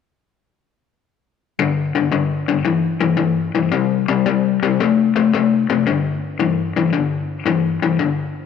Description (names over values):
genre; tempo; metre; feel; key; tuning
blues; 113 BPM; 4/4; swing 68% on 8ths; unclear; A4 = 440 Hz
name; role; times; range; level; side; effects
overdriven electric guitar; solo; 1.6-8.5 s; G2 to A3; -16 LUFS; left 6 dB; spring reverb
room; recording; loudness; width
light reverb; none; -16 LUFS; side -6 dB against mid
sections
1.6-5.9 A section; 5.9-8.5 B section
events
none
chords
1.6 G5; 3.7 C5; 5.9 G5